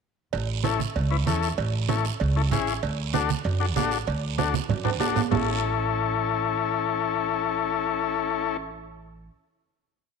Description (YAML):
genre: latin, cumbia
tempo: 193 BPM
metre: 4/4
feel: straight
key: A major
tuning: A4 = 440 Hz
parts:
  - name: upright bass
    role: bass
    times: 0.3-9.3 s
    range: A1 to F#2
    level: -28 LUFS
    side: right 2 dB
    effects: none
  - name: congas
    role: percussion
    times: 0.3-5.4 s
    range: none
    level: -28 LUFS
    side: right 10 dB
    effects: none
  - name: cowbell and timbales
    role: percussion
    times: 0.3-5.4 s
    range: none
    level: -32 LUFS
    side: right 14 dB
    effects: none
  - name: guiro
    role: percussion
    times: 0.3-5.4 s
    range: none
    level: -36 LUFS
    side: right 16 dB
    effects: none
  - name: combo organ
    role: accompaniment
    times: 0.6-8.6 s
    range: C#4 to B4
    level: -26 LUFS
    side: left 9 dB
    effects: none
room: moderate echo chamber reverb, RT60 1.5 s, small room ambience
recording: 1960s-style stereo with parts hard left and right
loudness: -23 LUFS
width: side -5 dB against mid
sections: 0.3-5.3 groove; 5.3-7.8 final chord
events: drum fill 4.4-5.3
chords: 0.3 A; 2.8 D; 5.3 A